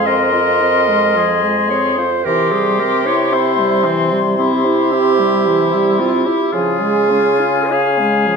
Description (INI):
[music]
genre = classical, slow romantic movement for wind quintet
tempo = 48-58 BPM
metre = 4/4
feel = rubato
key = unclear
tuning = A4 = 440 Hz
[part]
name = hollow concert flute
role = melody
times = 0.0-8.4 s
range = Ab5 to C6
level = -20 LUFS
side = left 13 dB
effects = none
[part]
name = mellow oboe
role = second line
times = 0.0-8.4 s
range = C4 to Bb4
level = -20 LUFS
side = left 5 dB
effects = none
[part]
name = clear French horn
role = accompaniment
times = 0.0-8.4 s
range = E3 to F4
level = -21 LUFS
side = left 2 dB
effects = none
[part]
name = clear clarinet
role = accompaniment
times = 0.0-8.4 s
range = F4 to F5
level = -17 LUFS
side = right 7 dB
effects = none
[part]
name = warm bassoon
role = bass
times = 0.0-8.4 s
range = F2 to Db3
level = -19 LUFS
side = right 2 dB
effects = none
[sound]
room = wet recital hall reverb, RT60 1.3 s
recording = none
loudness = -12 LUFS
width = side -5 dB against mid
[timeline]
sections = 0.0-8.4 A section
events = none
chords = 0.0 Fm; 2.3 C; 6.5 Db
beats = 0.05 1.16 | 2.25 3.33 4.38 5.46 | 6.53 7.71